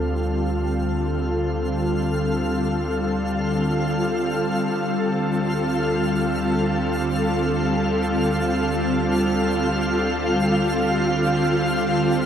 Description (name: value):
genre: ambient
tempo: free time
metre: none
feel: none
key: unclear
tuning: A4 = 441 Hz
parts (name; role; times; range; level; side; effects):
- ethereal airy pad; sustained chords; 0.0-12.3 s; D3 to A4; -21 LUFS; equal; ensemble chorus, built-in reverb
- warm sub bass; bass; 0.0-12.3 s; D2; -31 LUFS; equal; none
- twinkling granular texture; texture; 0.0-12.3 s; F4 to F5; -27 LUFS; equal; built-in reverb
room: wet huge ambient reverb, RT60 7.8 s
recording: dreamy mix soaked in reverb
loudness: -20 LUFS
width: side -8 dB against mid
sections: 0.0-12.3 A section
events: fade-in on synth texture 0.0-12.3; fade-out on sub bass 0.0-12.3; filter sweep on ambient pad 0.0-12.3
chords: 0.0 F69/D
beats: free time